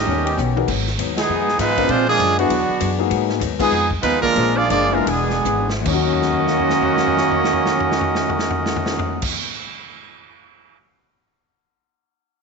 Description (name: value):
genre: jazz, big band swing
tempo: 139-199 BPM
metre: 4/4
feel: swing 62% on 8ths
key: unclear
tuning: A4 = 440 Hz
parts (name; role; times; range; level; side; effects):
- clear trumpet section; melody; 0.0-9.3 s; Ab3 to Eb5; -19 LUFS; right 1 dB; none
- bright trombone section; second line; 0.0-9.3 s; Cb3 to Gb4; -24 LUFS; right 12 dB; slapback echo
- upright bass; bass; 0.0-9.3 s; E1 to Bb2; -25 LUFS; left 1 dB; none
- vintage hollow-body jazz guitar; accompaniment; 0.1-9.4 s; Ab2 to Ab4; -28 LUFS; left 16 dB; none
- clear trombone section; sustained chords; 0.2-0.7 s; Eb3 to G4; -30 LUFS; left 1 dB; stereo widening
- swinging big-band drum kit; drums; 0.3-10.8 s; crash cymbal, hi-hat, kick drum, ride cymbal, snare drum, toms; -26 LUFS; equal; none
- warm grand piano; accompaniment; 0.6-9.6 s; Eb2 to Bb6; -24 LUFS; left 14 dB; none
room: moderate spring reverb, RT60 2.0 s, studio reverb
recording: 1960s-style stereo with parts hard left and right, nothing above 7.8 kHz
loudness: -16 LUFS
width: side -4 dB against mid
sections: 0.7-5.9 A section; 5.9-9.3 B section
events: drum fill 0.4-0.7, 5.5-5.9, 6.1-9.2; band accent 1.1, 3.6; slowing down 3.1-5.9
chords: 0.1 Eb7b13; 0.7 Abm7; 1.3 Fm7b5; 1.9 Bb7; 2.5 E7; 3.1 Abm7; 3.7 Fm7b5; 4.4 Bb7; 5.1 E7; 5.9 Ebm9